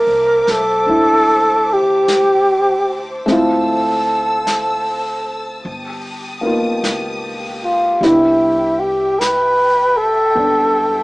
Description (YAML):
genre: jazz ballad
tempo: 51 BPM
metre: 4/4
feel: swing 66% on 8ths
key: C major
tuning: A4 = 440 Hz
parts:
  - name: mellow flugelhorn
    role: melody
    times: 0.0-11.0 s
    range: E4 to B4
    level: -14 LUFS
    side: equal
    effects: none
  - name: warm baby grand piano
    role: accompaniment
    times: 0.0-11.0 s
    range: G3 to F4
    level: -18 LUFS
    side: equal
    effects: none
  - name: warm symphonic string section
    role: sustained chords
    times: 0.0-11.0 s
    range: G4 to E6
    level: -27 LUFS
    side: left 1 dB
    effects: none
  - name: upright bass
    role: bass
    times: 0.0-11.0 s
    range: G1 to G2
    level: -35 LUFS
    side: equal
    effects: none
  - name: jazz brush drum kit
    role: drums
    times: 0.5-11.0 s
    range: brushed snare drum, hi-hat, snare drum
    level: -28 LUFS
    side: equal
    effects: none
room: moderate studio reverb, RT60 0.6 s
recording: band playing live in one room, small speaker sound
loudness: -13 LUFS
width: side -22 dB against mid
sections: 0.0-11.0 A section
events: none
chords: 0.0 Bbmaj9#11; 3.3 Dm9; 5.7 G7alt; 8.0 Cmaj7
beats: 0.89 2.09 | 3.28 4.47 5.66 6.84 | 8.02 9.20 10.37